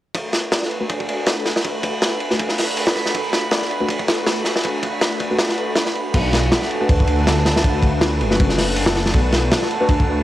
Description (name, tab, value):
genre	drum and bass, jungle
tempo	160 BPM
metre	4/4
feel	swing 54% on 16ths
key	B minor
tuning	A4 = 440 Hz
part	soft string machine	sustained chords	0.1-10.2 s	A3 to B4	-25 LUFS	equal	phaser, ensemble chorus, vintage 12-bit sampler grit, cassette tape
part	crunchy breakbeat drum kit	drums	0.1-10.1 s	crash cymbal, hi-hat, kick drum, ride cymbal, snare drum	-19 LUFS	equal	high-pass filter on kick, cassette tape, high-pass filter on cymbals, high-pass filter on hats, high-pass filter on snare, high-pass filter on room
part	drifting glass-harmonics texture	texture	0.7-10.2 s	A5 to B5	-29 LUFS	right 2 dB	chorus, built-in reverb, cassette tape
part	deep mellow chord stab	stabs	0.8-9.9 s	A3 to B4	-25 LUFS	left 1 dB	chorus, cassette tape, dub echo
part	dark detuned saw bass	bass	6.1-10.2 s	F#1 to D2	-20 LUFS	equal	none
room	moderate spring reverb, RT60 1.2 s, studio ambience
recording	home recording on cassette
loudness	-16 LUFS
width	side -14 dB against mid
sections	0.1-6.1 A section; 6.1-10.2 B section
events	filter sweep on synth stab 0.1-6.1; drop 6.1-10.2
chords	0.1 Bm7